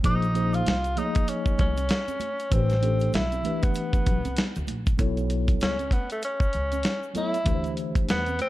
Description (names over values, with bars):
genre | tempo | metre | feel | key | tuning
hip hop, jazz-hop | 97 BPM | 4/4 | swing 60% on 16ths | unclear | A4 = 440 Hz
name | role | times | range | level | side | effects
mellow tine electric piano | accompaniment | 0.0-8.3 s | E3 to D#5 | -30 LUFS | left 1 dB | medium stereo tremolo
upright bass | bass | 0.0-8.4 s | A1 to E2 | -28 LUFS | equal | none
dusty soul sampler-style drum kit | drums | 0.0-8.5 s | hi-hat, kick drum, snare drum | -25 LUFS | equal | none
egg shaker and congas | percussion | 0.0-8.5 s | none | -40 LUFS | right 7 dB | none
breathy tenor saxophone | melody | 0.1-8.5 s | A3 to E#4 | -29 LUFS | equal | none
room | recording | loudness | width
studio ambience | dark, warm production | -23 LUFS | side -16 dB against mid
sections
0.0-5.0 A section; 5.0-8.5 B section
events
tenor saxophone solo 5.0-8.5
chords
0.0 A#m9; 2.5 Am9; 5.0 Bsus2; 7.5 Dsus2